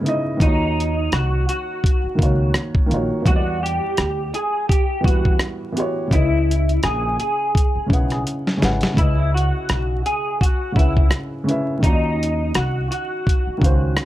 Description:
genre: lo-fi hip hop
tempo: 84 BPM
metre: 4/4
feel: swing 57% on 16ths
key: C# dorian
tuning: A4 = 440 Hz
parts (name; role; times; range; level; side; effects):
- dark upright piano; accompaniment; 0.0-14.1 s; C#3 to F#5; -24 LUFS; right 1 dB; low-pass filter, plate reverb
- dusty soul sampler-style drum kit; drums; 0.1-14.1 s; hi-hat, kick drum, rim click, snare drum; -18 LUFS; equal; none
- electric guitar through a small old amp; melody; 0.4-13.9 s; D#4 to G#4; -23 LUFS; equal; ensemble chorus, low-pass filter, plate reverb
- upright bass; bass; 0.4-13.9 s; G#1 to E2; -22 LUFS; equal; none
room: light reverb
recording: vinyl crackle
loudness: -17 LUFS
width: side -14 dB against mid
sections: 0.0-9.0 A section; 9.0-14.1 A section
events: drum fill 8.3-9.0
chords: 0.4 D#m9; 3.3 Em9; 6.1 C#m9; 11.8 D#m9

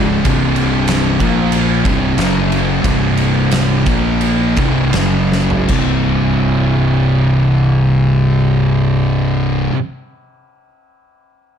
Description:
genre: stoner and doom metal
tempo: 78-95 BPM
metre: 4/4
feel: straight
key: unclear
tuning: A4 = 440 Hz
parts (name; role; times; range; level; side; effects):
- thick fuzz guitar; riff; 0.0-9.7 s; C2 to Bb3; -16 LUFS; left 7 dB; distortion
- thick fuzz guitar; riff; 0.0-9.8 s; C2 to Bb3; -16 LUFS; right 8 dB; distortion
- fuzz fingered electric bass; bass; 0.0-9.7 s; C1 to Bb1; -21 LUFS; equal; overdrive
- oversized low-tuned drum kit; drums; 0.2-5.9 s; crash cymbal, kick drum, ride cymbal, snare drum, toms; -20 LUFS; equal; none
room: light reverb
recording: dark, warm production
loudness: -12 LUFS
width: side -8 dB against mid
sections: 0.0-5.7 A section; 5.7-8.8 B section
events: slowing down 0.2-5.7; drum fill 5.3-5.7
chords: 0.0 C5; 1.2 Bb5; 1.9 C5; 2.2 F#5; 2.8 C5; 3.9 Bb5; 4.6 C5; 5.0 F#5; 5.7 C5

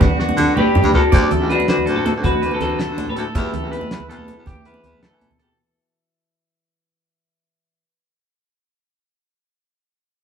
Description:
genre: highlife guitar band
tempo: 108 BPM (dotted quarters)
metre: 12/8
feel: straight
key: D major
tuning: A4 = 440 Hz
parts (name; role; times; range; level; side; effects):
- semi-hollow electric guitar; melody; 0.0-5.2 s; D4 to D5; -20 LUFS; left 3 dB; none
- flamenco guitar; accompaniment; 0.0-7.8 s; G2 to G4; -30 LUFS; left 4 dB; none
- mellow tonewheel organ; sustained chords; 0.0-1.1 s; D4 to B5; -30 LUFS; left 3 dB; none
- electric guitar at the edge of break-up; arpeggios; 0.0-5.6 s; F#4 to E5; -25 LUFS; right 3 dB; spring reverb
- warm baritone saxophone; bass; 0.0-5.5 s; C#2 to E3; -23 LUFS; equal; none
- cloth-damped thuddy drum kit; drums; 0.0-5.5 s; hi-hat, kick drum, snare drum, toms; -18 LUFS; equal; none
- congas; percussion; 0.0-5.5 s; none; -23 LUFS; right 3 dB; none
room: moderate stone room reverb, RT60 1.2 s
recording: band playing live in one room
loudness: -15 LUFS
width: side -7 dB against mid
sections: 0.0-1.1 A section; 1.1-5.6 B section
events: drum fill 0.0-1.1; fade-out 1.1-5.6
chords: 0.0 G; 1.1 Dadd9; 3.4 Em

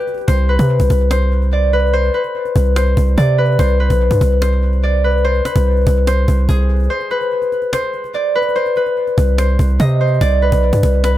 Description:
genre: hip hop, trap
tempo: 145 BPM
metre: 4/4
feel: half-time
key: unclear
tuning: A4 = 440 Hz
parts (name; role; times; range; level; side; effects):
- concert harp; melody; 0.0-11.2 s; G4 to Eb5; -17 LUFS; left 1 dB; dub echo
- cajon; drums; 0.0-11.2 s; none; -24 LUFS; right 1 dB; dub echo
- long sustained 808-style bass; bass; 0.3-11.2 s; B1 to C3; -13 LUFS; equal; none
room: small room ambience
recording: echo-heavy mix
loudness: -12 LUFS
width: side -13 dB against mid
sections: 0.3-11.2 A section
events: break 0.0, 6.9-7.7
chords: 0.3 Csus2; 3.6 Gadd11/B (rootless); 6.9 Cmaj7(no3); 10.2 G (rootless)

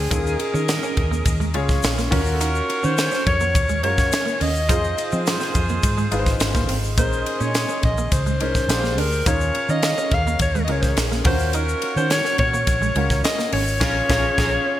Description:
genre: polished 1980s jazz-funk pop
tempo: 105 BPM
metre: 4/4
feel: straight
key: unclear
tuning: A4 = 441 Hz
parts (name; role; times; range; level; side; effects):
- mellow alto saxophone; melody; 0.0-14.8 s; Ab4 to F5; -23 LUFS; left 1 dB; none
- warm grand piano; accompaniment; 0.0-14.8 s; Db4 to Db5; -28 LUFS; left 2 dB; analog chorus
- vintage muted fingered electric bass; bass; 0.0-14.6 s; Ab1 to F3; -24 LUFS; equal; none
- warm horn section; second line; 0.1-14.5 s; Db4 to C6; -30 LUFS; right 2 dB; none
- electric guitar at the edge of break-up; riff; 0.1-13.6 s; Ab3 to F4; -30 LUFS; right 5 dB; analog chorus
- crisp fusion drum kit; drums; 0.1-14.5 s; crash cymbal, hi-hat, kick drum, ride cymbal, snare drum; -23 LUFS; equal; gated reverb
- tube shaker; percussion; 0.1-13.8 s; none; -37 LUFS; left 6 dB; none
room: light reverb, studio ambience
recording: bright 1980s-style digital production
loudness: -18 LUFS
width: side -13 dB against mid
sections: 0.0-14.8 A section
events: band accent 13.8-14.8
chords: 0.1 Eb9sus4; 2.1 Ebm9; 4.7 Fm7; 7.0 Bbm11; 8.7 Bb13; 9.3 Eb9sus4; 11.2 Ebm9; 13.8 Bbm7

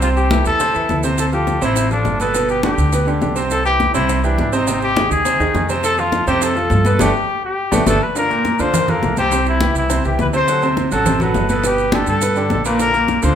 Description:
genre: latin, salsa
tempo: 207 BPM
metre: 4/4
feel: straight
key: C major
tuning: A4 = 440 Hz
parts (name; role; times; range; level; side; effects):
- warm trumpet; melody; 0.0-13.3 s; D4 to C5; -19 LUFS; left 2 dB; none
- bright grand piano; accompaniment; 0.0-13.3 s; Bb2 to C5; -19 LUFS; right 2 dB; none
- upright bass; bass; 0.0-13.3 s; G1 to G2; -21 LUFS; equal; none
- bongos; percussion; 0.0-13.3 s; none; -28 LUFS; left 4 dB; none
- congas; percussion; 0.0-13.3 s; none; -24 LUFS; left 1 dB; none
- maracas; percussion; 0.0-13.3 s; none; -29 LUFS; right 8 dB; none
room: moderate large studio reverb, RT60 1.2 s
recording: minimal, uncompressed stereo recording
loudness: -14 LUFS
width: side -9 dB against mid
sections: 0.0-8.2 A section; 8.2-13.3 B section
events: drum fill 7.0-8.2; band accent 7.0-8.2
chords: 0.0 Am/C; 1.2 Dm7; 2.3 G; 3.5 C; 4.7 Ab; 5.8 F; 7.0 Gadd9; 8.2 Bb; 9.3 C; 10.5 D7; 11.6 Gadd9; 12.8 Bbadd9

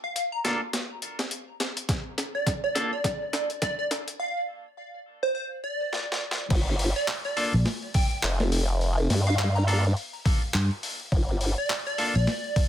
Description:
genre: glitch hop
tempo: 104 BPM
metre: 4/4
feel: swing 58% on 16ths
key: G minor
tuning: A4 = 441 Hz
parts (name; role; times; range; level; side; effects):
- plucky unison lead; melody; 0.0-12.7 s; C5 to Bb5; -30 LUFS; right 1 dB; phaser, tape echo
- boom bap sampler-style drum kit; drums; 0.2-12.7 s; crash cymbal, handclaps, hi-hat, snare drum; -30 LUFS; left 1 dB; overdrive, high-pass filter on hats, high-pass filter on toms, high-pass filter on snare, high-pass filter on cymbals, high-pass filter on room
- semi-hollow electric guitar; stabs; 0.4-2.9, 7.4-12.1 s; Bb3 to A4; -32 LUFS; equal; vintage 12-bit sampler grit, sidechain pumping, low-pass filter, tape echo
- electronic kick drum; drums; 1.9-12.7 s; none; -24 LUFS; equal; overdrive
- formant-sweep wobble bass; bass; 6.5-11.6 s; F1 to G2; -24 LUFS; equal; chorus, tube saturation
- fingered electric bass; bass; 7.5-12.3 s; Bb1 to G2; -22 LUFS; equal; tube saturation
room: light reverb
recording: high-pass filter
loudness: -24 LUFS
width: side -11 dB against mid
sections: 0.0-6.5 A section; 6.5-12.7 B section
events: build-up 0.0-6.5; drum fill 0.0-4.2, 5.9-6.5; filter sweep on digital synth lead 0.0-6.5; break 4.2-6.5; drop 6.5-12.7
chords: 0.0 Bbmaj7; 6.5 Gm7

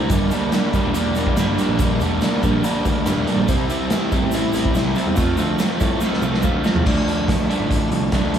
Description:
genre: indie rock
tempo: 142 BPM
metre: 4/4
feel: straight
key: G dorian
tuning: A4 = 439 Hz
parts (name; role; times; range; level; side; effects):
- crunchy overdriven guitar; riff; 0.0-8.4 s; G2 to F4; -20 LUFS; equal; none
- picked electric bass; bass; 0.0-8.4 s; E1 to A2; -23 LUFS; right 1 dB; none
- raw garage drum kit; drums; 0.1-8.4 s; crash cymbal, hi-hat, kick drum, snare drum, toms; -22 LUFS; right 1 dB; none
- tube shaker; percussion; 0.1-6.7 s; none; -40 LUFS; right 5 dB; none
room: little or no reverb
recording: small room reverb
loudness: -17 LUFS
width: side -8 dB against mid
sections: 0.0-6.9 A section; 6.9-8.4 B section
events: drum fill 6.0-6.9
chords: 0.1 Gm; 3.5 C; 5.2 F; 6.9 Dm

